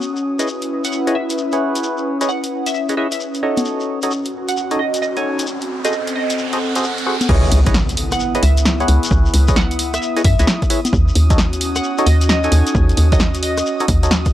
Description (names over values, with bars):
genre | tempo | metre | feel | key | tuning
UK garage, two-step garage | 132 BPM | 4/4 | swing 65% on 16ths | C# minor | A4 = 440 Hz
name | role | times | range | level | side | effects
shekere | percussion | 0.0-14.3 s | none | -28 LUFS | left 3 dB | none
airy breathy pad | texture | 0.0-14.3 s | B3 to D#6 | -23 LUFS | left 1 dB | chorus, sidechain pumping
percussive organ stab | stabs | 0.4-14.1 s | D#4 to G#5 | -22 LUFS | equal | chorus, phaser
punchy analog drum machine | drums | 0.4-14.3 s | congas, crash cymbal, hi-hat, rim click, snare drum | -21 LUFS | equal | overdrive
glassy wavetable pluck | melody | 0.8-14.1 s | D#5 to F#5 | -24 LUFS | right 1 dB | chorus, phaser
riser and impact | sound effects | 4.6-9.1 s | none | -25 LUFS | equal | none
hollow knocking FM bass | bass | 7.3-14.3 s | C#2 to F#2 | -15 LUFS | equal | none
electronic kick drum | drums | 7.3-14.3 s | none | -17 LUFS | equal | overdrive
room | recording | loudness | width
little or no reverb | dry, gritty hardware recording, cassette tape | -14 LUFS | side -13 dB against mid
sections
0.0-7.3 A section; 7.3-14.3 B section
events
riser 4.6-7.3; drop 7.3-14.3; impact 7.3-9.1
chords
0.0 C#m9; 3.7 D#m7b5; 5.5 G#7b9; 7.3 C#m9; 10.9 D#m7b5